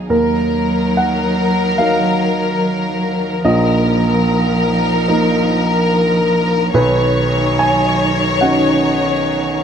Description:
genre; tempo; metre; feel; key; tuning
neoclassical piano and strings; 72 BPM; 4/4; rubato; Eb minor; A4 = 440 Hz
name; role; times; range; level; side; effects
warm baby grand piano; accompaniment; 0.0-9.6 s; Bb1 to Ab5; -16 LUFS; right 1 dB; none
rich chamber string section; sustained chords; 0.0-9.6 s; F3 to C#5; -25 LUFS; right 1 dB; none
rich studio violin section; melody; 0.1-9.6 s; Bb4 to C#5; -18 LUFS; left 4 dB; none
rich cello; second line; 0.1-9.6 s; D#3 to Gb3; -20 LUFS; right 2 dB; none
room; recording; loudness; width
light reverb; close, detailed microphones; -13 LUFS; side -8 dB against mid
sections
0.0-9.6 A section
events
none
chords
0.1 Ebm; 3.4 Bbsus4; 6.7 Badd9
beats
| 0.10 0.95 1.79 2.62 | 3.44 4.26 5.08 5.91 | 6.73 7.58 8.41 9.25

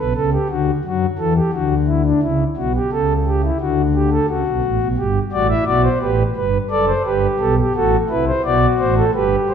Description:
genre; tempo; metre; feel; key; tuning
classical, baroque-style 3-part fugue for pipe organ; 87 BPM; 4/4; straight; G major; A4 = 440 Hz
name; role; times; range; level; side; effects
pipe organ, principal; solo; 0.0-9.5 s; F#1 to E5; -15 LUFS; equal; none
room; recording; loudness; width
wet recital hall reverb, RT60 1.6 s; minimal, uncompressed stereo recording; -15 LUFS; side -8 dB against mid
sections
0.0-9.5 A section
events
none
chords
0.0 D; 2.2 C#dim; 3.6 D; 5.0 G; 7.7 F#dim/A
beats
0.15 0.84 1.53 | 2.23 2.92 3.60 4.29 | 4.97 5.67 6.36 7.05 | 7.75 8.44 9.14

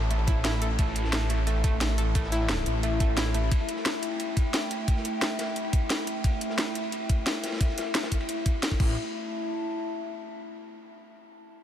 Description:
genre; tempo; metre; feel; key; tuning
dark technical drum and bass; 176 BPM; 4/4; straight; unclear; A4 = 440 Hz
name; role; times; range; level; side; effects
phased detuned saw bass; bass; 0.0-3.5, 8.8-9.0 s; A1; -27 LUFS; equal; phaser, overdrive
downlifter; sound effects; 0.0-0.8 s; none; -47 LUFS; equal; none
warbly tape-like pad; texture; 0.0-10.3 s; A3 to A5; -33 LUFS; left 1 dB; chorus, built-in reverb, sidechain pumping
analog pluck; arpeggios; 0.1-3.5 s; A3 to A4; -35 LUFS; right 1 dB; chorus, sidechain pumping, ping-pong delay
crunchy breakbeat drum kit; drums; 0.1-8.7 s; ride cymbal, snare drum; -40 LUFS; equal; high-pass filter on cymbals, high-pass filter on snare, high-pass filter on room
drum and bass drum kit; drums; 0.1-8.9 s; crash cymbal, hi-hat, snare drum; -32 LUFS; equal; overdrive
electronic kick drum; drums; 0.3-8.9 s; none; -25 LUFS; equal; none
room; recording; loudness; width
light reverb, digital ambience; none; -25 LUFS; side -10 dB against mid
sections
0.0-9.0 A section; 9.0-10.3 B section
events
none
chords
0.0 A5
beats
0.11 0.45 | 0.79 1.13 1.47 1.81 | 2.15 2.49 2.83 3.17 | 3.52 3.86 4.20 4.54 | 4.88 5.22 5.56 5.90 | 6.24 6.58 6.92 7.26 | 7.61 7.95 8.29 8.63 | 8.97 9.31 9.65 9.99

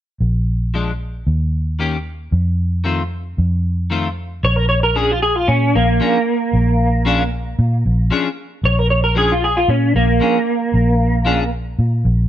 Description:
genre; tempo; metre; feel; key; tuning
straight-eighth soul blues; 114 BPM; 4/4; straight; unclear; A4 = 440 Hz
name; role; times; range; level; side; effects
vintage muted fingered electric bass; bass; 0.2-12.3 s; Bb1 to Bb2; -17 LUFS; equal; none
clean electric guitar; stabs; 0.7-11.4 s; Eb3 to Ab4; -21 LUFS; left 5 dB; lush chorus
electric guitar through a small old amp; melody; 4.4-11.5 s; Bb3 to C#5; -17 LUFS; right 1 dB; ensemble chorus
room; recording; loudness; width
little or no reverb; none; -15 LUFS; side -11 dB against mid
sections
0.2-4.4 A section; 4.4-12.3 B section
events
clean electric guitar solo 4.4-12.3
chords
0.2 Bb7; 1.3 Eb7; 2.3 F7; 4.4 Bb7#9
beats
| 0.21 0.74 1.27 1.80 | 2.32 2.85 3.38 3.90 | 4.43 4.96 5.48 6.01 | 6.53 7.06 7.58 8.11 | 8.63 9.16 9.69 10.21 | 10.74 11.26 11.79

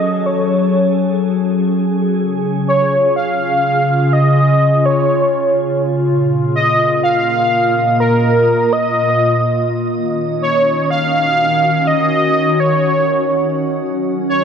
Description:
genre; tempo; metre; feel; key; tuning
IDM; 124 BPM; 4/4; straight; Db major; A4 = 441 Hz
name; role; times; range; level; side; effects
warm velvety synth lead; melody; 0.0-14.4 s; Bb4 to F5; -15 LUFS; right 1 dB; chorus, analog delay
glassy FM pad; sustained chords; 0.0-14.4 s; Bb2 to Eb5; -16 LUFS; left 1 dB; ensemble chorus, built-in reverb
room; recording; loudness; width
moderate spring reverb, RT60 1.2 s, digital ambience; echo-heavy mix; -12 LUFS; side -7 dB against mid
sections
0.0-2.2 A section; 2.2-14.4 B section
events
none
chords
0.0 Gbmadd9; 2.2 Db; 6.1 Bbsus4; 9.9 Ebm7; 13.8 Gbsus2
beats
| 0.26 0.74 1.23 1.71 | 2.19 2.68 3.16 3.65 | 4.13 4.62 5.10 5.58 | 6.07 6.55 7.03 7.52 | 8.00 8.49 8.97 9.45 | 9.94 10.42 10.90 11.39 | 11.87 12.36 12.84 13.32 | 13.81 14.29

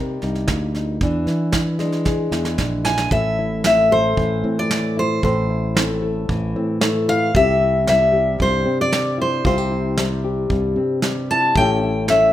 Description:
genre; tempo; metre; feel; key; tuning
acoustic folk duo or small band; 114 BPM; 4/4; straight; unclear; A4 = 440 Hz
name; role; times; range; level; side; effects
nylon-string guitar; accompaniment; 0.0-12.3 s; G2 to Bb4; -23 LUFS; left 3 dB; none
fingered electric bass; bass; 0.0-12.3 s; A1 to E3; -23 LUFS; right 1 dB; none
soft brush drum kit; drums; 0.2-12.2 s; kick drum, snare drum; -22 LUFS; right 2 dB; none
picked steel-string acoustic guitar; melody; 2.8-12.3 s; C5 to A5; -18 LUFS; left 1 dB; none
room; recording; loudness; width
moderate large studio reverb, RT60 0.8 s; minimal, uncompressed stereo recording; -16 LUFS; side -12 dB against mid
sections
0.0-3.1 A section; 3.1-12.3 B section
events
drum fill 2.1-3.1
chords
0.0 Cm7; 1.0 E7; 3.1 Am; 7.3 C; 11.6 A7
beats
0.47 | 1.00 1.53 2.06 2.58 | 3.11 3.64 4.17 4.70 | 5.22 5.75 6.28 6.81 | 7.33 7.86 8.39 8.92 | 9.45 9.97 10.50 11.03 | 11.56 12.08

